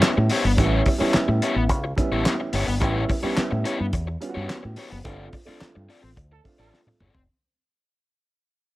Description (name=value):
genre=funk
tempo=108 BPM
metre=4/4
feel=straight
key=A mixolydian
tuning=A4 = 439 Hz
part: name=crunchy overdriven guitar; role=accompaniment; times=0.0-7.2 s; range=B3 to D5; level=-27 LUFS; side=left 4 dB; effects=none
part: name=dark upright piano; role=stabs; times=0.0-7.1 s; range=G3 to F#4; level=-27 LUFS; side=right 3 dB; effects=none
part: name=cloth-damped thuddy drum kit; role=drums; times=0.0-7.3 s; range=handclaps, hi-hat, kick drum, snare drum, toms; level=-24 LUFS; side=equal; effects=none
part: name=fingered electric bass with an envelope filter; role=bass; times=0.2-7.3 s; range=F#1 to A2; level=-24 LUFS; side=equal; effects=none
part: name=brilliant trombone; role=second line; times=6.3-6.7 s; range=A4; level=-61 LUFS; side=right 8 dB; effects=slapback echo
room=light reverb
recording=vinyl crackle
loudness=-20 LUFS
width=side -18 dB against mid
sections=0.0-7.3 A section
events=fade-out 0.0-7.3; band accent 5.1-7.3; drum fill 6.7-7.3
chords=0.0 A9; 5.1 G9sus4